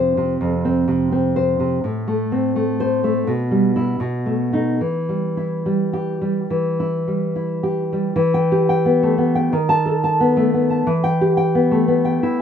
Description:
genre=romantic piece for solo classical guitar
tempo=70-91 BPM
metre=4/4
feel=rubato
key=E minor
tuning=A4 = 440 Hz
part: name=nylon-string guitar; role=solo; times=0.0-12.4 s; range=F2 to A5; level=-17 LUFS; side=equal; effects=none
room=light reverb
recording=recorded outdoors, with no room sound, nothing above 10.7 kHz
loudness=-17 LUFS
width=side -8 dB against mid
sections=0.0-8.2 A section; 8.2-12.4 B section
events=none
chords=0.0 F5; 1.8 Am; 3.3 Em/B; 4.0 B7; 4.8 Em; 9.5 B7/D#; 10.9 Em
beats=0.41 1.12 | 1.84 2.56 3.27 4.01 | 4.82 5.67 6.51 7.36 | 8.17 8.86 9.53 10.21 | 10.87 11.54 12.22

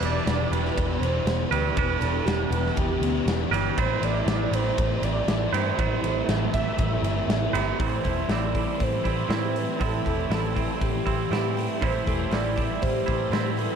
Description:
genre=rock, shoegaze and dream pop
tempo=120 BPM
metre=4/4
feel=straight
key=unclear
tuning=A4 = 440 Hz
part: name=warm velvety synth lead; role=melody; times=0.0-13.8 s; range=G4 to E5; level=-31 LUFS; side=right 3 dB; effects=chorus, analog delay
part: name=picked twelve-string acoustic guitar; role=arpeggios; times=0.0-13.8 s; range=E3 to G4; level=-34 LUFS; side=left 3 dB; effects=wide subtle chorus, analog delay
part: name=thick fuzz guitar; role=riff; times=0.0-13.8 s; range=E2 to A3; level=-32 LUFS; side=left 13 dB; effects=distortion, ensemble chorus
part: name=twangy electric guitar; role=riff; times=0.0-13.8 s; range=A2 to C5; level=-29 LUFS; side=right 12 dB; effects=reverse reverb
part: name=vintage muted picked electric bass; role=bass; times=0.0-13.7 s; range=E1 to A2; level=-28 LUFS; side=equal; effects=none
part: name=big rock drum kit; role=drums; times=0.0-13.7 s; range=hi-hat, kick drum, ride cymbal, snare drum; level=-29 LUFS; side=equal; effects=none
room=light reverb, small room ambience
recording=none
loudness=-22 LUFS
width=side -7 dB against mid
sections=0.0-7.8 A section; 7.8-13.8 B section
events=none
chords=0.0 Em7; 3.8 Am7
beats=0.28 0.77 1.27 | 1.77 2.27 2.77 3.28 | 3.78 4.28 4.78 5.28 | 5.78 6.29 6.79 7.29 | 7.79 8.30 8.80 9.30 | 9.80 10.31 10.81 11.31 | 11.81 12.32 12.82 13.32

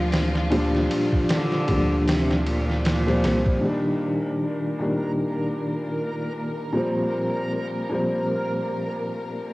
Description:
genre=trip hop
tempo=77 BPM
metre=4/4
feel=swing 56% on 16ths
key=unclear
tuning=A4 = 440 Hz
part: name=bright cello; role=melody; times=0.0-3.6 s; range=Bb2 to F3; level=-30 LUFS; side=equal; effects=cassette tape, tape echo
part: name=warm upright piano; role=accompaniment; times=0.0-9.5 s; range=Bb2 to D4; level=-24 LUFS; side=equal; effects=harmonic tremolo, cassette tape, tape echo
part: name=rich studio string section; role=sustained chords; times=0.0-9.5 s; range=F3 to Bb4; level=-34 LUFS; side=left 1 dB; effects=vintage 12-bit sampler grit, low-pass filter, cassette tape
part: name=electric guitar at the edge of break-up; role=arpeggios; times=0.0-3.2 s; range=F3 to D4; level=-35 LUFS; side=right 5 dB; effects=none
part: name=soft dub sub bass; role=bass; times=0.0-3.6 s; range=C2 to D2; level=-26 LUFS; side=equal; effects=none
part: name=trip hop sampler-style drum kit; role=drums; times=0.1-3.6 s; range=hi-hat, kick drum, ride cymbal, snare drum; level=-26 LUFS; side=equal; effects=cassette tape
part: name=backwards swelling texture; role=texture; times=4.9-9.5 s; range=Bb4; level=-34 LUFS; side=right 1 dB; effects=built-in reverb, cassette tape
room=light reverb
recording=home recording on cassette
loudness=-21 LUFS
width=side -20 dB against mid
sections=0.0-3.6 A section; 3.6-9.5 B section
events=none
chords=0.0 Gm7/D; 3.6 Ebmaj7; 6.8 C7sus4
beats=| 0.52 1.30 2.08 2.86 | 3.64 4.42 5.20 5.97 | 6.75 7.53 8.31 9.09

